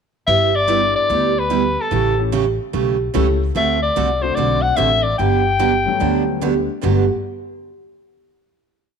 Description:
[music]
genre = country, western swing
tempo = 147 BPM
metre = 4/4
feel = swing 65% on 8ths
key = G major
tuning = A4 = 440 Hz
[part]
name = warm soprano saxophone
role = melody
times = 0.3-6.4 s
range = A4 to G5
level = -18 LUFS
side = left 3 dB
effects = none
[part]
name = picked steel-string acoustic guitar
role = accompaniment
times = 0.3-7.0 s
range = G2 to A4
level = -20 LUFS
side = right 10 dB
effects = none
[part]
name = upright bass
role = bass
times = 0.3-7.1 s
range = G1 to D2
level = -22 LUFS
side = left 2 dB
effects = none
[part]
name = dark upright piano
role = accompaniment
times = 0.7-7.1 s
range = F#3 to A4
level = -26 LUFS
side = left 12 dB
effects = none
[sound]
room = moderate echo chamber reverb, RT60 1.6 s, small room ambience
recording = 1960s-style stereo with parts hard left and right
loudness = -15 LUFS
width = side -6 dB against mid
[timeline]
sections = 0.3-6.8 A section; 6.8-8.5 final chord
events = none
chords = 0.3 G6; 1.9 A7; 3.6 D7; 5.2 Gmaj9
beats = | 0.28 0.69 1.10 1.51 | 1.92 2.33 2.73 3.15 | 3.55 3.96 4.37 4.78 | 5.19 5.60 6.00 6.41 | 6.82

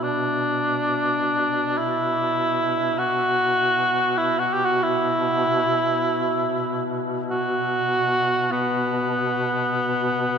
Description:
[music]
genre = caucasian folk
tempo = free time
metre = none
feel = none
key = B minor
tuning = A4 = 440 Hz
[part]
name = mellow cor anglais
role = melody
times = 0.0-10.4 s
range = B3 to G4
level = -21 LUFS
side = equal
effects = none
[part]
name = warm duduk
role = drone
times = 0.0-10.4 s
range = B2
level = -27 LUFS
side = left 1 dB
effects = none
[sound]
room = wet cathedral reverb, RT60 7.0 s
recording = minimal, uncompressed stereo recording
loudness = -20 LUFS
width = side -7 dB against mid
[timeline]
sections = 0.0-10.4 A section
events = slowing down 6.2-10.4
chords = none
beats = free time

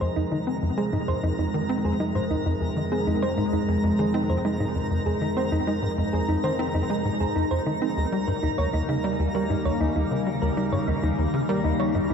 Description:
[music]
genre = ambient, sequencer-driven space music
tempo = 98 BPM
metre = 4/4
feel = straight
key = F minor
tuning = A4 = 440 Hz
[part]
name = evolving wavetable pad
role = sustained chords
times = 0.0-12.1 s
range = C3 to Eb4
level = -28 LUFS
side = left 1 dB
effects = chorus, built-in reverb, phaser
[part]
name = thumb-piano-like synth pluck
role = arpeggios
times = 0.0-12.1 s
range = Eb4 to Db5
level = -30 LUFS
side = right 2 dB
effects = chorus, auto-pan, analog delay
[part]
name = tight sequencer bass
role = riff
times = 0.0-12.1 s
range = Eb2 to C4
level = -26 LUFS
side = equal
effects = wide subtle chorus, analog delay
[part]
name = analog drone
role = bass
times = 0.0-12.1 s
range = Eb2 to F2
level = -36 LUFS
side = equal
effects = chorus
[part]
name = twinkling granular texture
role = texture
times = 0.0-12.1 s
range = Bb4 to Bb5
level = -33 LUFS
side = equal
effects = built-in reverb
[sound]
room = moderate plate reverb, RT60 2.8 s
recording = dark, warm production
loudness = -22 LUFS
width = side -7 dB against mid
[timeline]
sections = 0.0-12.1 A section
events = filter sweep on synth arpeggio sound 0.0-12.1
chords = 0.0 Fm7; 8.0 Eb7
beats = 0.01 | 0.62 1.23 1.85 2.46 | 3.07 3.68 4.30 4.91 | 5.52 6.13 6.75 7.36 | 7.97 8.58 9.19 9.81 | 10.42 11.03 11.64

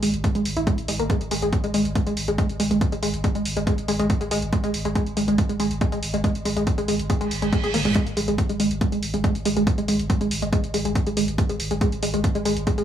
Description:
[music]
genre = driving peak-time techno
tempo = 140 BPM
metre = 4/4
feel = straight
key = unclear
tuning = A4 = 439 Hz
[part]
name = tight sequenced synth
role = riff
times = 0.0-12.8 s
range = G#3 to G#4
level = -24 LUFS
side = equal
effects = chorus, overdrive, sidechain pumping, digital delay
[part]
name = saturated sub bass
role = bass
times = 0.0-12.7 s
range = G#1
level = -29 LUFS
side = equal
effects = tube saturation, sidechain pumping, low-pass filter
[part]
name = punchy analog drum machine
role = drums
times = 0.0-12.8 s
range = hi-hat, toms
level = -31 LUFS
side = right 1 dB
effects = none
[part]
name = electronic kick drum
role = drums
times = 0.2-12.8 s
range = none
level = -23 LUFS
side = equal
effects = none
[part]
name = reverse cymbal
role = sound effects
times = 7.3-8.0 s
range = none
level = -30 LUFS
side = right 5 dB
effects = none
[sound]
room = moderate plate reverb, RT60 1.5 s, digital ambience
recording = none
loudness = -20 LUFS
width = side -10 dB against mid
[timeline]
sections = 0.0-12.8 A section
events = reverse cymbal 7.3-8.0; drum fill 7.6-8.0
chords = none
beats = 0.24 0.67 | 1.10 1.53 1.96 2.38 | 2.81 3.24 3.67 4.10 | 4.53 4.96 5.38 5.81 | 6.24 6.67 7.10 7.53 | 7.96 8.38 8.81 9.24 | 9.67 10.10 10.53 10.96 | 11.38 11.81 12.24 12.67

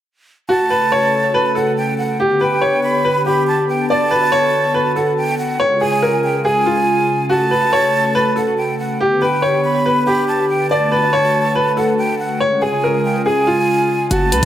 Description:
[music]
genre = hip hop, drill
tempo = 141 BPM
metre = 4/4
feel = half-time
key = unclear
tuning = A4 = 440 Hz
[part]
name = bright upright piano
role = melody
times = 0.5-14.4 s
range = E#4 to D5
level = -16 LUFS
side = equal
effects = tape echo
[part]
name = breathy jazz flute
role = second line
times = 0.5-14.4 s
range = F#5 to B5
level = -19 LUFS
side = right 2 dB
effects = tape echo
[part]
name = warm analog pad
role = sustained chords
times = 0.5-14.4 s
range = C#3 to B4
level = -21 LUFS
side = left 1 dB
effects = chorus
[part]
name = hard-hitting 808-style bass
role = bass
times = 14.1-14.4 s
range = F#1 to C#2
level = -17 LUFS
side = equal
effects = none
[part]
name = electronic hi-hat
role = drums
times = 14.1-14.4 s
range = none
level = -21 LUFS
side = left 2 dB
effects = none
[sound]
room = moderate plate reverb, RT60 1.2 s, studio reverb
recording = echo-heavy mix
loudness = -14 LUFS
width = side -11 dB against mid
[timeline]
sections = 0.5-14.1 A section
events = none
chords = 0.5 F#m; 2.2 G; 3.9 D6; 5.6 C#; 7.3 F#m; 9.0 G; 10.7 D6; 12.4 C#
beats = | 0.49 0.92 1.34 1.77 | 2.19 2.62 3.04 3.47 | 3.90 4.32 4.75 5.17 | 5.60 6.02 6.45 6.87 | 7.30 7.72 8.15 8.58 | 9.00 9.43 9.85 10.28 | 10.70 11.13 11.55 11.98 | 12.41 12.83 13.26 13.68 | 14.11

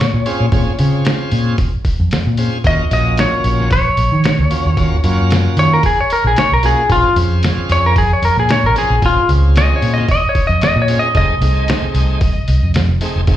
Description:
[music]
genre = straight-eighth soul blues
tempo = 113 BPM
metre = 4/4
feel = swing 55% on 16ths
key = Bb minor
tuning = A4 = 441 Hz
[part]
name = clean lap steel guitar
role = melody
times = 0.0-12.7 s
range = F4 to Eb5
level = -16 LUFS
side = left 1 dB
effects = slapback echo, analog delay
[part]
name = vintage muted fingered electric bass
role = bass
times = 0.0-13.4 s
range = F1 to Eb3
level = -14 LUFS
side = equal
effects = none
[part]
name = lo-fi sampler-style drum kit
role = drums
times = 0.0-13.4 s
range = hi-hat, kick drum, snare drum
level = -19 LUFS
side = equal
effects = slapback echo
[part]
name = bright tonewheel organ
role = accompaniment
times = 0.3-13.4 s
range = A3 to Ab4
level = -22 LUFS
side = right 2 dB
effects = slow rotary speaker, overdrive, slapback echo
[sound]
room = little or no reverb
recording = live gig heard through the venue's PA, club reverb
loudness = -12 LUFS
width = side -12 dB against mid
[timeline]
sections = 0.0-13.4 A section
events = electric slide guitar solo 0.0-13.4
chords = 0.0 Bbm7; 2.6 Ebm7; 6.9 Bbm7; 11.1 F7#9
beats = 0.00 | 0.53 1.06 1.59 2.12 | 2.65 3.18 3.71 4.24 | 4.77 5.30 5.83 6.36 | 6.90 7.43 7.96 8.49 | 9.02 9.55 10.09 10.62 | 11.15 11.68 12.21 12.74 | 13.28

